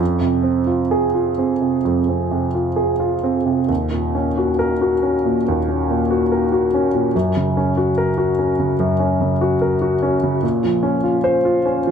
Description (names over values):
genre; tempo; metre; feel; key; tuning
neoclassical minimalist piano; 64-75 BPM; 4/4; rubato; Eb dorian; A4 = 442 Hz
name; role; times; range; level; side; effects
clear concert grand piano; solo; 0.0-11.9 s; Eb2 to C5; -16 LUFS; equal; tape echo
room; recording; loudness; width
light reverb; none; -16 LUFS; side -7 dB against mid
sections
0.0-11.9 A section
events
none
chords
0.0 Fm; 3.7 Ebm7; 7.1 Gb; 10.4 Bbmadd9